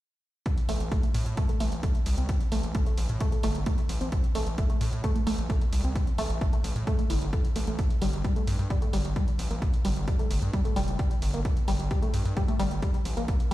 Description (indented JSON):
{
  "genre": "driving peak-time techno",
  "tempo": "131 BPM",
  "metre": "4/4",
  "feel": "straight",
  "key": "A phrygian",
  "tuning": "A4 = 442 Hz",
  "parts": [
    { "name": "electronic hi-hat", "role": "drums", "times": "0.5-13.5 s", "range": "none", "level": "-42 LUFS", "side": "right 2 dB", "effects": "sidechain pumping on hats" },
    { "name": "electronic kick drum", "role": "drums", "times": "0.5-13.4 s", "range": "none", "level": "-27 LUFS", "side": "equal", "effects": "none" },
    { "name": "tight sequenced synth", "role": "riff", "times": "0.7-13.5 s", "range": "G3 to E4", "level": "-33 LUFS", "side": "equal", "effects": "chorus, sidechain pumping, ping-pong delay" },
    { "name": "gritty driven synth bass", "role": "bass", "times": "0.7-13.5 s", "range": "F1 to A2", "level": "-29 LUFS", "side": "equal", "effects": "sidechain pumping" }
  ],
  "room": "little or no reverb",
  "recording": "played on a big sound system in a bare room, stone room reverb",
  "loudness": "-25 LUFS",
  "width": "side -16 dB against mid",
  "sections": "0.5-13.5 A section",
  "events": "none",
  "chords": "none",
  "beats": "| 0.46 0.92 1.38 1.83 | 2.29 2.75 3.21 3.67 | 4.12 4.58 5.04 5.50 | 5.96 6.41 6.87 7.33 | 7.79 8.24 8.70 9.16 | 9.62 10.08 10.54 10.99 | 11.45 11.91 12.37 12.82 | 13.28"
}